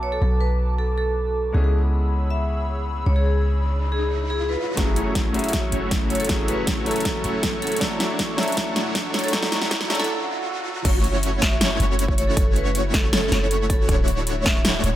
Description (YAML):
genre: future bass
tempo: 158 BPM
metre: 4/4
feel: half-time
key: F# minor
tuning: A4 = 440 Hz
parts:
  - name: vibraphone with hard mallets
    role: melody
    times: 0.0-14.7 s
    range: G#4 to E5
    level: -29 LUFS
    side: equal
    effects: sidechain pumping, low-pass filter, tape echo
  - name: clear baby grand piano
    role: accompaniment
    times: 0.0-10.9 s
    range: F#3 to C#5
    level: -30 LUFS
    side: left 1 dB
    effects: sidechain pumping, tape echo
  - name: airy breathy pad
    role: sustained chords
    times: 0.0-15.0 s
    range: C#3 to E6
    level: -34 LUFS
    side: equal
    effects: chorus, sidechain pumping
  - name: warm 808-style bass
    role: bass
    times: 0.0-15.0 s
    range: D1 to C#2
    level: -23 LUFS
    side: equal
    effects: sidechain pumping
  - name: riser and swell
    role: sound effects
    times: 3.0-10.9 s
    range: none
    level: -34 LUFS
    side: right 2 dB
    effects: none
  - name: dense compressed supersaw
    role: riff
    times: 4.8-15.0 s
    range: A3 to C#5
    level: -27 LUFS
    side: equal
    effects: sidechain pumping, low-pass filter
  - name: big-room dance drum kit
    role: drums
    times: 4.8-14.9 s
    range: crash cymbal, hi-hat, snare drum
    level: -24 LUFS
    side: equal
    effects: none
  - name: electronic kick drum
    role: drums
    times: 4.8-14.5 s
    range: none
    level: -23 LUFS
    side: equal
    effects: none
  - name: airy dreamy lead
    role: arpeggios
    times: 10.8-15.0 s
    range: C#5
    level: -30 LUFS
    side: left 1 dB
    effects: chorus, sidechain pumping, tape echo
room: light reverb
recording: high-pass filter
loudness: -19 LUFS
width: side -13 dB against mid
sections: 0.0-4.8 A section; 4.8-10.8 B section; 10.8-15.0 C section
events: filter sweep on analog synth pad 0.0-4.8; riser 3.0-4.8; build-up 4.8-10.8; drum fill 4.8-10.1; filter sweep on supersaw synth 4.8-10.8; filter sweep on vibraphone 4.8-10.8; filter sweep 4.8-10.8; break 10.1-10.8; swell 10.1-10.8; drop 10.8-15.0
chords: 0.0 Bm7; 1.5 C#m7; 4.8 F#m7; 7.8 Dmaj9; 10.8 F#m7; 13.9 Dmaj9